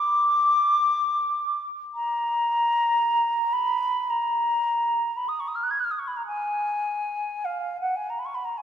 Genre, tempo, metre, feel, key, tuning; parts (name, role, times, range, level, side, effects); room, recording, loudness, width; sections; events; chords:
classical, free, expressive piece for unaccompanied flute; 45-57 BPM; 4/4; rubato; A4 = 440 Hz
mellow concert flute; solo; 0.0-8.6 s; E#5 to G#6; -22 LUFS; left 1 dB
wet church reverb, RT60 2.9 s; dark, warm production; -22 LUFS; side -9 dB against mid
0.0-8.6 A section